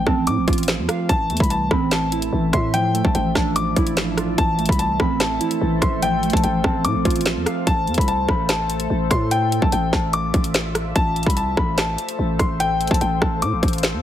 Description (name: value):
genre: hip hop, drill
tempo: 146 BPM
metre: 4/4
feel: half-time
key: A minor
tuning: A4 = 439 Hz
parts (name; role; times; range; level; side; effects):
- clear upright piano; melody; 0.0-14.0 s; G5 to D6; -24 LUFS; left 2 dB; low-pass filter
- warbly lo-fi synth keys; accompaniment; 0.0-7.7 s; E3 to F5; -23 LUFS; right 4 dB; chorus, low-pass filter
- growling 808-style bass; bass; 0.0-14.0 s; A1 to A2; -23 LUFS; equal; none
- drill drum kit; drums; 0.1-13.9 s; finger snaps, hi-hat, kick drum, rim click, snare drum; -21 LUFS; equal; overdrive
- deep dark ambient pad; sustained chords; 1.8-14.0 s; F3 to F5; -29 LUFS; left 2 dB; chorus, built-in reverb
room: digital ambience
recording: heavily compressed radio sound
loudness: -17 LUFS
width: side -11 dB against mid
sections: 0.0-7.7 A section; 7.7-14.0 A section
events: none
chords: 0.0 F/A; 1.1 Am; 2.7 Dmadd9/A; 4.4 Am; 6.0 F/A; 7.7 Am; 9.3 Dmadd9/A; 11.0 Am; 12.6 F/A